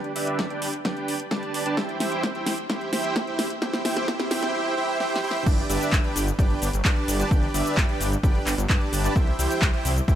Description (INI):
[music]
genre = EDM, festival progressive house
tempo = 130 BPM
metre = 4/4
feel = straight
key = G major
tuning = A4 = 440 Hz
[part]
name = dense compressed supersaw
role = riff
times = 0.0-10.2 s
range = D4 to A5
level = -26 LUFS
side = right 1 dB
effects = sidechain pumping, low-pass filter, dub echo
[part]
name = pop drum kit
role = drums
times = 0.0-10.2 s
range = crash cymbal, handclaps, hi-hat, shaker, snare drum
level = -28 LUFS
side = equal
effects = overdrive
[part]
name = electronic kick drum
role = drums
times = 0.4-10.2 s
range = none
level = -23 LUFS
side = equal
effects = high-pass filter on kick, high-pass filter on room
[part]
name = wide detuned saw bass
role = bass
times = 5.5-10.2 s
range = G1 to G2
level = -27 LUFS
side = equal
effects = chorus, sidechain pumping
[sound]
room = light reverb, digital ambience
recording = high-pass filter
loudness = -22 LUFS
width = side -11 dB against mid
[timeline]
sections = 0.0-5.5 A section; 5.5-10.2 B section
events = build-up 0.0-5.5; drum fill 0.0-4.5, 5.0-5.5; filter sweep on supersaw synth 0.0-5.5; drop 5.5-10.2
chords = 0.0 G; 1.8 C; 5.5 G; 9.2 C